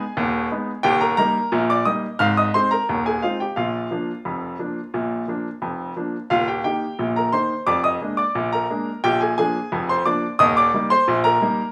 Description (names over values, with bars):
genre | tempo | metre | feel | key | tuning
ragtime piano | 88 BPM | 2/4 | straight | Eb major | A4 = 441 Hz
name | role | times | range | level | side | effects
bright upright piano | solo | 0.0-11.7 s | Eb1 to F6 | -21 LUFS | equal | none
room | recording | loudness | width
studio reverb | rough home demo mix | -21 LUFS | mono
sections
0.0-11.7 A section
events
none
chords
0.0 Abm; 0.8 Eb; 2.2 Ab; 3.6 Bb; 6.3 Eb; 7.7 Bb7/F; 9.0 Bb7; 10.4 Eb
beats
0.17 | 0.85 1.53 | 2.21 2.88 | 3.56 4.25 | 4.94 5.62 | 6.31 6.99 | 7.67 8.35 | 9.03 9.71 | 10.39 11.07